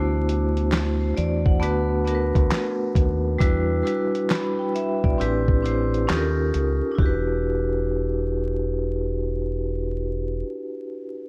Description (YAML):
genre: lo-fi hip hop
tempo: 67 BPM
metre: 4/4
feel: swing 65% on 16ths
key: E minor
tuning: A4 = 441 Hz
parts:
  - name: vibraphone with medium hard mallets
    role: accompaniment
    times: 0.0-11.3 s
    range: G3 to B5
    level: -27 LUFS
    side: equal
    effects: low-pass filter
  - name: deep dub fingered electric bass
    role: bass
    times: 0.0-10.4 s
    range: E1 to E2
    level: -27 LUFS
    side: equal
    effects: none
  - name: lo-fi sampler-style drum kit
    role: drums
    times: 0.3-7.3 s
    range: handclaps, hi-hat, kick drum, snare drum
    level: -25 LUFS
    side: equal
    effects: vintage 12-bit sampler grit
room: light reverb, digital ambience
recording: vinyl crackle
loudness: -23 LUFS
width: mono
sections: 0.0-7.0 A section; 7.0-10.6 B section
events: none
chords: 0.0 D7; 1.6 Bm7/D; 3.4 Em7; 5.2 Am11; 6.1 D#9; 7.0 Em7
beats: 0.71 1.61 2.51 | 3.40 4.30 5.19 6.09 | 6.98 7.88 8.78 9.67